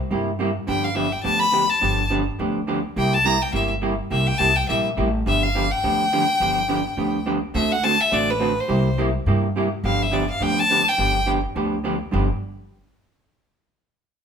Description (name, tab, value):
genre	country, western swing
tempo	210 BPM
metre	4/4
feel	swing 60% on 8ths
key	G mixolydian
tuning	A4 = 439 Hz
part	vintage hollow-body jazz guitar	accompaniment	0.1-12.3 s	G2 to A4	-24 LUFS	right 2 dB	none
part	upright bass	bass	0.1-12.3 s	G1 to G2	-25 LUFS	equal	none
part	clear fiddle	melody	0.7-11.3 s	B4 to B5	-21 LUFS	left 2 dB	none
room	moderate studio reverb, RT60 0.9 s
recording	band playing live in one room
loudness	-18 LUFS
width	side -7 dB against mid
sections	0.0-12.1 A section; 12.1-13.3 B section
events	none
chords	0.0 C7; 0.7 G7; 3.0 C7; 5.3 G7; 7.5 D7; 8.7 C7; 9.8 G7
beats	0.10 0.39 | 0.68 0.96 1.25 1.54 | 1.82 2.11 2.40 2.68 | 2.97 3.25 3.54 3.83 | 4.11 4.40 4.69 4.97 | 5.26 5.54 5.83 6.12 | 6.40 6.69 6.98 7.26 | 7.55 7.84 8.12 8.41 | 8.70 8.98 9.27 9.55 | 9.84 10.13 10.41 10.70 | 10.99 11.28 11.56 11.85 | 12.13